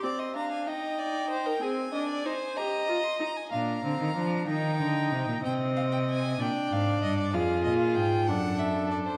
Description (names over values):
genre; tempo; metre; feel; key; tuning
classical, baroque-style fugue for string quartet; 63 BPM (dotted quarters); 6/8; straight; Eb major; A4 = 440 Hz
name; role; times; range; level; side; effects
clear violin; melody; 0.0-9.2 s; C5 to D6; -37 LUFS; equal; none
rich violin; second line; 0.0-9.2 s; Ab4 to G5; -36 LUFS; equal; none
rich viola; accompaniment; 0.0-9.2 s; C4 to G4; -33 LUFS; equal; none
clear cello; bass; 3.5-9.2 s; F2 to F3; -32 LUFS; equal; none
room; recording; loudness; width
moderate concert hall reverb, RT60 2.3 s; dark, warm production; -29 LUFS; mono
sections
0.0-3.5 A section; 3.5-9.2 B section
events
none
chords
0.0 Eb5; 0.7 Cm/Eb (rootless); 1.6 Ab/C; 2.6 Eb; 3.5 Bb; 4.5 Eb; 5.4 Fm/C (rootless); 6.4 Bb (rootless); 7.3 Fmadd9; 8.3 D/F#